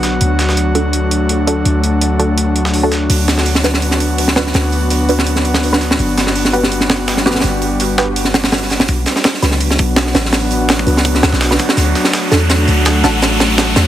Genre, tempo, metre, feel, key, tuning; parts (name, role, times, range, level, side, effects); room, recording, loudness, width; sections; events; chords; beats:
drum and bass, jungle; 166 BPM; 4/4; swing 54% on 16ths; B minor; A4 = 440 Hz
airy breathy pad; sustained chords; 0.0-13.9 s; F#3 to F#4; -17 LUFS; left 1 dB; chorus, vintage 12-bit sampler grit
filtered dub chord stab; stabs; 0.0-13.1 s; D4 to B4; -21 LUFS; right 1 dB; phaser, dub echo
warm 808-style bass; bass; 0.0-13.9 s; G1 to E2; -17 LUFS; equal
breakbeat sampler-style drum kit; drums; 0.0-13.9 s; hi-hat, snare drum; -20 LUFS; right 1 dB; high-pass filter on snare, high-pass filter on hats
tight funk drum kit; drums; 3.1-13.9 s; hi-hat, kick drum, snare drum; -15 LUFS; right 1 dB; high-pass filter on kick, high-pass filter on hats, high-pass filter on snare, high-pass filter on room
riser; sound effects; 10.5-13.9 s; -22 LUFS; equal
light reverb, small room ambience; heavily compressed radio sound; -11 LUFS; side -12 dB against mid
0.0-8.9 A section; 8.9-13.9 B section
filter sweep on synth stab 0.0-8.9; build-up 8.9-13.9; filter sweep on analog synth pad 8.9-13.9; riser 10.5-13.9; drum fill 11.8-13.9
0.2 D; 3.1 Bm/D; 6.0 Gmaj7; 8.9 Bm; 11.8 D
| 0.21 0.57 0.93 1.29 | 1.66 2.02 2.38 2.74 | 3.10 3.46 3.82 4.18 | 4.55 4.91 5.27 5.63 | 5.99 6.35 6.71 7.08 | 7.44 7.80 8.16 8.52 | 8.88 9.24 9.61 9.97 | 10.33 10.69 11.05 11.41 | 11.78 12.14 12.50 12.86 | 13.22 13.58